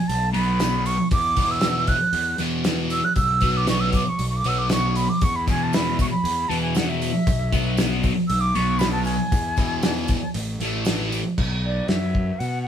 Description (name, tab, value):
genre	psychedelic rock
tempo	117 BPM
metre	4/4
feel	straight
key	B dorian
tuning	A4 = 440 Hz
part	concert flute	melody	0.0-12.7 s	D5 to F#6	-24 LUFS	right 2 dB	none
part	fuzz picked electric bass	bass	0.1-12.7 s	A1 to B2	-26 LUFS	equal	overdrive
part	cloth-damped thuddy drum kit	drums	0.1-12.5 s	crash cymbal, hi-hat, kick drum, snare drum	-25 LUFS	equal	none
part	tambourine	percussion	0.1-11.2 s	none	-42 LUFS	right 5 dB	none
part	thick fuzz guitar	riff	0.3-11.2 s	E2 to B3	-25 LUFS	equal	distortion, phaser
room	light reverb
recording	band playing live in one room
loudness	-19 LUFS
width	side -9 dB against mid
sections	0.0-11.4 A section; 11.4-12.7 B section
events	flute solo 0.0-11.4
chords	0.0 B5; 1.1 E5; 3.2 B5; 5.2 E5; 7.3 B5; 9.3 E; 10.3 A5; 11.4 B5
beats	0.10 0.61 | 1.12 1.63 2.15 2.66 | 3.17 3.68 4.20 4.71 | 5.22 5.73 6.25 6.76 | 7.27 7.78 8.29 8.81 | 9.32 9.83 10.35 10.86 | 11.38 11.89 12.40